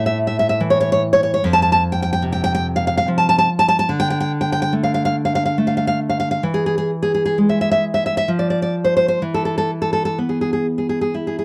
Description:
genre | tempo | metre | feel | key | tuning
romantic piece for solo classical guitar | 61-75 BPM | 3/4 | rubato | unclear | A4 = 438 Hz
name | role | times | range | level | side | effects
nylon-string guitar | solo | 0.0-11.4 s | F2 to A5 | -18 LUFS | equal | none
room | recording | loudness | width
light reverb | dark, warm production | -18 LUFS | mono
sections
0.0-11.4 A section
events
none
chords
0.0 A5; 1.4 F5; 3.9 Dmadd11; 6.4 E; 8.3 N.C.; 9.2 E5

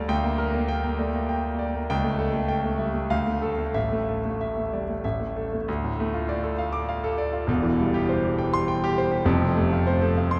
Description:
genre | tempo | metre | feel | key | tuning
classical, virtuoso piano study | 100 BPM | 3/4 | rubato | D minor | A4 = 441 Hz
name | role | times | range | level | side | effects
warm concert grand piano | solo | 0.0-10.4 s | E1 to D6 | -25 LUFS | equal | none
room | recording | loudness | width
wet cathedral reverb, RT60 6.0 s | dark, warm production | -25 LUFS | mono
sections
0.0-5.7 A section; 5.7-10.4 B section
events
none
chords
0.1 Gm/D; 1.9 A7/C#; 3.1 Dm; 3.8 Asus4; 5.0 A5; 5.7 Dm; 7.5 C/E; 9.3 F

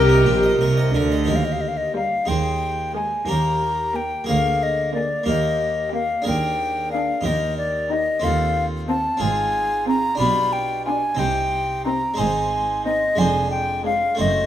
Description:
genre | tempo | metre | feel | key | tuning
classical, baroque-style concerto movement with solo episodes | 60 BPM (dotted quarters) | 6/8 | straight | Eb major | A4 = 440 Hz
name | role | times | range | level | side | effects
bright baroque flute | melody | 0.0-14.5 s | Bb4 to B5 | -22 LUFS | left 2 dB | none
dark studio violin section | melody | 0.0-14.1 s | G4 to Eb5 | -38 LUFS | left 4 dB | none
rich chamber violin section | second line | 0.0-14.1 s | D4 to Bb4 | -33 LUFS | left 6 dB | none
dark chamber viola section | accompaniment | 0.0-14.1 s | G3 to G4 | -25 LUFS | equal | none
harpsichord | accompaniment | 0.0-14.5 s | D2 to Eb5 | -26 LUFS | equal | none
rich chamber double bass section | bass | 0.0-14.5 s | F1 to Eb2 | -26 LUFS | right 2 dB | none
warm studio cello section | bass | 0.0-14.5 s | D2 to D3 | -26 LUFS | right 3 dB | none
room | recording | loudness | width
moderate recital hall reverb, RT60 1.7 s | close, detailed microphones | -19 LUFS | side -11 dB against mid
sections
0.0-1.3 A section; 1.3-14.5 B section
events
none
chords
0.0 Eb; 2.3 Ab/Eb; 3.3 Eb; 4.3 Bb7/D; 5.3 Eb; 6.3 Bb7/Eb; 7.2 Eb; 8.2 F7/Eb; 9.2 Fm/Ab; 10.2 G7/B; 11.2 Cm; 12.2 Ab; 13.2 Dm7b5/F

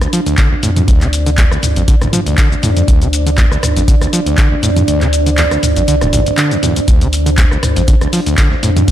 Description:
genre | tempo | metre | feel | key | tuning
acid house | 120 BPM | 4/4 | swing 54% on 16ths | D minor | A4 = 440 Hz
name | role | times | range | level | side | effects
overdriven acid bass | riff | 0.0-8.9 s | D1 to F3 | -17 LUFS | equal | distortion, sidechain pumping, ping-pong delay
punchy analog drum machine | drums | 0.0-8.9 s | handclaps, hi-hat, rim click, shaker, toms | -18 LUFS | equal | none
deep dark ambient pad | texture | 0.0-8.9 s | D4 to F5 | -19 LUFS | right 2 dB | chorus, built-in reverb, sidechain pumping
electronic kick drum | drums | 0.4-8.9 s | none | -11 LUFS | equal | none
saturated sub bass | bass | 0.6-8.9 s | D1 to F2 | -16 LUFS | equal | sidechain pumping
dusty soul sampler-style drum kit | drums | 6.9-8.9 s | hi-hat, snare drum, tambourine | -30 LUFS | equal | none
room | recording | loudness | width
light reverb | none | -10 LUFS | side -12 dB against mid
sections
0.0-8.9 A section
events
kick drops out 4.9-6.9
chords
0.0 Dm7

